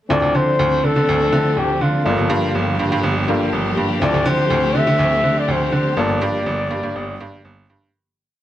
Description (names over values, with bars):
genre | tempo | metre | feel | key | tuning
disco | 122 BPM | 4/4 | straight | D minor | A4 = 440 Hz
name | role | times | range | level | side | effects
breathy flugelhorn | melody | 0.1-7.5 s | F4 to E5 | -20 LUFS | left 2 dB | none
overdriven clav | accompaniment | 0.1-7.9 s | A3 to A4 | -25 LUFS | left 4 dB | auto-wah
warm studio string section | sustained chords | 0.1-7.9 s | D3 to G4 | -24 LUFS | equal | none
clear baby grand piano | bass | 0.1-7.9 s | G1 to D3 | -19 LUFS | right 2 dB | none
room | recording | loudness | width
light reverb | none | -15 LUFS | side -12 dB against mid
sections
0.1-7.9 groove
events
fade-out 6.0-7.9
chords
0.1 Dm7; 2.1 Gm7; 4.0 Dm7; 6.0 Gm7